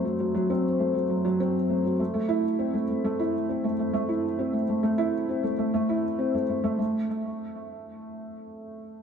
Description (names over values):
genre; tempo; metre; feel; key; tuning
electronica; 100 BPM; 4/4; straight; unclear; A4 = 440 Hz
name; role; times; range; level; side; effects
felt-muted upright piano; solo; 0.0-9.0 s; F#3 to E4; -25 LUFS; equal; wide subtle chorus, tape echo
room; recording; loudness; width
wet plate reverb, RT60 3.0 s; dreamy mix soaked in reverb; -24 LUFS; side -7 dB against mid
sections
0.0-6.8 A section; 6.8-9.0 B section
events
drop 0.0-6.8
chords
none